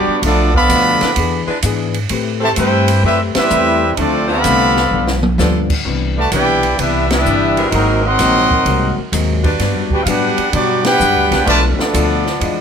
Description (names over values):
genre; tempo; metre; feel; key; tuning
jazz, big band swing; 128 BPM; 4/4; swing 67% on 8ths; G major; A4 = 442 Hz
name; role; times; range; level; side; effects
bright trumpet section; melody; 0.0-12.6 s; B3 to C6; -15 LUFS; equal; none
bright trombone section; second line; 0.0-12.6 s; C3 to G4; -19 LUFS; right 1 dB; none
archtop guitar, miked and amplified; accompaniment; 0.0-12.6 s; G2 to B4; -21 LUFS; left 6 dB; none
upright bass; bass; 0.0-12.6 s; G1 to B2; -19 LUFS; equal; none
open jazz drum kit; drums; 0.2-12.6 s; crash cymbal, hi-hat, kick drum, ride cymbal, snare drum, toms; -21 LUFS; right 1 dB; none
warm saxophone section; sustained chords; 1.0-11.9 s; G3 to C5; -23 LUFS; right 1 dB; none
room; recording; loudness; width
moderate large studio reverb, RT60 1.2 s; none; -12 LUFS; side -7 dB against mid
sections
0.0-12.6 A section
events
band accent 3.3, 7.0, 10.8; drum fill 4.9-5.4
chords
0.2 Bm7b5; 1.2 E7; 2.1 Am9; 4.0 Dm7; 4.9 G7; 5.9 Cmaj9; 7.7 Ab9; 9.6 Gmaj7; 11.5 Bm7b5